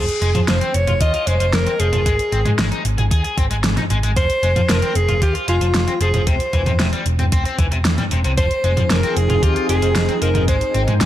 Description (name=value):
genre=synthwave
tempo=114 BPM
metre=4/4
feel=straight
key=F minor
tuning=A4 = 442 Hz
part: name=breathy alto saxophone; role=melody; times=0.0-11.0 s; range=F4 to Eb5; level=-21 LUFS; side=equal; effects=ping-pong delay, shimmer reverb
part: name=biting overdriven guitar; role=riff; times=0.0-11.1 s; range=C3 to Ab4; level=-25 LUFS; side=left 2 dB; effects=lush chorus, low-pass filter, digital delay, shimmer reverb
part: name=hollow-body short-scale picked electric bass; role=bass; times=0.0-11.1 s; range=E1 to Ab2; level=-19 LUFS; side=equal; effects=sidechain pumping
part: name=pop drum kit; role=drums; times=0.1-11.1 s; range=hi-hat, snare drum, toms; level=-22 LUFS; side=equal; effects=overdrive
part: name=electronic kick drum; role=drums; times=1.0-10.6 s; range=none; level=-19 LUFS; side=equal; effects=none
part: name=lush unison pad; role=sustained chords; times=8.7-11.1 s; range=F3 to G5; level=-26 LUFS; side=equal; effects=chorus, sidechain pumping, shimmer reverb
room=light reverb, digital ambience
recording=none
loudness=-15 LUFS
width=side -12 dB against mid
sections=0.0-11.1 A section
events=none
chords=0.0 Fm; 2.1 Ab5; 4.2 Fm; 6.3 C/E; 8.4 Fm7; 10.5 Abmaj7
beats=0.48 1.01 1.53 | 2.06 2.59 3.11 3.64 | 4.17 4.69 5.22 5.75 | 6.27 6.80 7.32 7.85 | 8.38 8.90 9.43 9.96 | 10.48 11.01